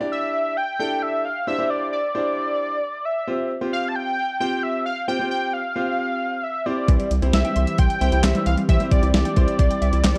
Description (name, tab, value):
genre	synth-pop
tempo	133 BPM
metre	4/4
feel	straight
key	unclear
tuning	A4 = 440 Hz
part	bright concert grand piano	accompaniment	0.0-10.0 s	C4 to D5	-30 LUFS	equal	none
part	octave-doubled lead	melody	0.1-10.2 s	D5 to A5	-26 LUFS	equal	chorus
part	lush unison pad	sustained chords	6.9-10.2 s	E3 to G4	-32 LUFS	equal	chorus
part	analog pluck	arpeggios	6.9-10.2 s	E3 to E6	-32 LUFS	equal	chorus, tape echo
part	round analog bass	bass	6.9-10.1 s	C2	-23 LUFS	equal	none
part	clean 12-bit digital drum machine	drums	6.9-10.2 s	handclaps, hi-hat, kick drum, snare drum	-23 LUFS	equal	none
room	moderate digital room reverb, RT60 1.0 s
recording	dark, warm production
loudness	-22 LUFS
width	mono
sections	0.0-10.2 A section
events	none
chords	0.0 Cadd9; 3.3 Fsus2; 6.7 C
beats	0.12 0.57 1.02 | 1.47 1.92 2.37 2.82 | 3.27 3.73 4.18 4.63 | 5.08 5.53 5.98 6.43 | 6.88 7.33 7.79 8.24 | 8.69 9.14 9.59 10.04